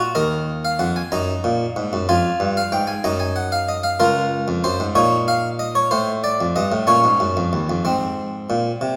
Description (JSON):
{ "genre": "classical, baroque-style 3-part fugue for harpsichord", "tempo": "62 BPM (dotted quarters)", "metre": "6/8", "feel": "straight", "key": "Eb minor", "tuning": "A4 = 440 Hz", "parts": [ { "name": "harpsichord", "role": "solo", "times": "0.0-9.0 s", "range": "Db2 to Bb5", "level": "-20 LUFS", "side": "equal", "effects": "none" } ], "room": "wet scoring stage reverb, RT60 1.6 s", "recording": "recorded in a church or concert hall", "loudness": "-20 LUFS", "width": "mono", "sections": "0.1-7.9 A section; 7.9-9.0 B section", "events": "none", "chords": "0.1 Ebm; 1.1 Ebm/Gb; 2.1 Fmadd9; 3.0 Ebm/Gb; 4.0 Bbm/Db; 5.0 Bbm; 5.9 Adim; 6.9 Bbm; 7.9 Ab", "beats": "| 0.15 1.12 | 2.09 3.04 | 4.00 4.96 | 5.92 6.88 | 7.85 8.82" }